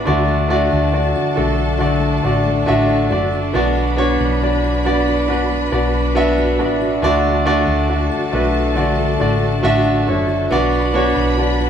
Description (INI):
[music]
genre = pop ballad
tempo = 69 BPM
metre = 4/4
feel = straight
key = D major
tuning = A4 = 435 Hz
[part]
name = clear concert grand piano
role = accompaniment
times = 0.0-11.7 s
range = B2 to A5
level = -17 LUFS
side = right 1 dB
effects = none
[part]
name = rich studio string section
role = sustained chords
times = 0.0-11.7 s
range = D4 to B5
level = -24 LUFS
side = left 1 dB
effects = none
[part]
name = fingerpicked steel-string acoustic guitar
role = arpeggios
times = 0.0-11.7 s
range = B2 to F#4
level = -23 LUFS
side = left 4 dB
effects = none
[part]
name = hollow-body short-scale fingered electric bass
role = bass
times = 0.0-11.7 s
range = F#1 to D2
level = -21 LUFS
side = equal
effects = none
[sound]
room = wet large studio reverb, RT60 0.9 s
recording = band playing live in one room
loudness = -14 LUFS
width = side -8 dB against mid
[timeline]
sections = 0.0-11.7 A section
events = grand piano fill 5.3-7.0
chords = 0.1 D; 3.5 Bm; 7.0 D; 10.5 Bm